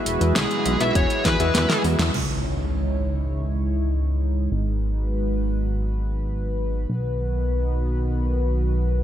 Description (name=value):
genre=synthwave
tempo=101 BPM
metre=4/4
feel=straight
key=C# minor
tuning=A4 = 437 Hz
part: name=chorused pulse-width pad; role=sustained chords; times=0.0-9.0 s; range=D#3 to C#5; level=-27 LUFS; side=right 1 dB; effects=sidechain pumping
part: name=chorused polysynth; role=stabs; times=0.0-2.1 s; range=E3 to E5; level=-28 LUFS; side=left 5 dB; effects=ping-pong delay
part: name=chorused synth bass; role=bass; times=0.1-9.0 s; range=E1 to E2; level=-23 LUFS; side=equal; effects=none
part: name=pop drum kit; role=drums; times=0.1-2.3 s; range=crash cymbal, hi-hat, snare drum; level=-25 LUFS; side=equal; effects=gated reverb
part: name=high-gain lead guitar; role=melody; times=0.4-1.8 s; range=G#4 to E5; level=-26 LUFS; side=equal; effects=distortion, ping-pong delay
part: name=electronic kick drum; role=drums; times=1.0-1.4 s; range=none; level=-25 LUFS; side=equal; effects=none
part: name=impact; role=sound effects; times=2.1-4.5 s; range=none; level=-32 LUFS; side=equal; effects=none
room=light reverb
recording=none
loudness=-20 LUFS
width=side -11 dB against mid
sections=0.0-2.1 A section; 2.1-9.0 B section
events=drum fill 1.3-2.1; band accent 2.0; impact 2.1-4.5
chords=0.0 Eadd9; 2.1 C#madd9; 4.5 G#m7; 6.9 B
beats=0.36 0.95 1.55 | 2.14 2.74 3.33 3.92 | 4.52 5.11 5.71 6.30 | 6.89 7.49 8.08 8.68